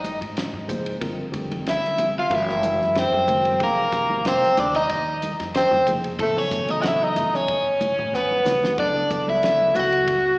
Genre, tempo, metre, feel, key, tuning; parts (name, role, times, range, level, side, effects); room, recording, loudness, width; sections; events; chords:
electric jazz fusion; 93 BPM; 4/4; swing 53% on 16ths; A4 = 441 Hz
warm tenor saxophone; melody; 0.0-10.4 s; A3 to F#4; -21 LUFS; equal; slapback echo, analog delay
overdriven semi-hollow guitar; second line; 0.0-10.4 s; A4 to F#5; -27 LUFS; equal; slapback echo
upright bass; bass; 0.0-10.4 s; F1 to A2; -34 LUFS; equal
damped 70s drum kit; drums; 0.0-10.2 s; hi-hat, kick drum, ride cymbal, snare drum; -32 LUFS; equal
congas; percussion; 0.0-9.9 s; -33 LUFS; equal
mellow tine electric piano; accompaniment; 0.7-10.1 s; C3 to C5; -29 LUFS; equal; fast stereo tremolo, slapback echo
light reverb; live gig heard through the venue's PA, recital hall reverb, small speaker sound; -19 LUFS; side -24 dB against mid
0.0-10.4 A section
drum fill 8.1-8.8
0.0 Abmaj9; 1.0 Gm7; 2.3 Gb7#11; 3.6 Fm9; 6.2 A13; 8.8 Dmaj9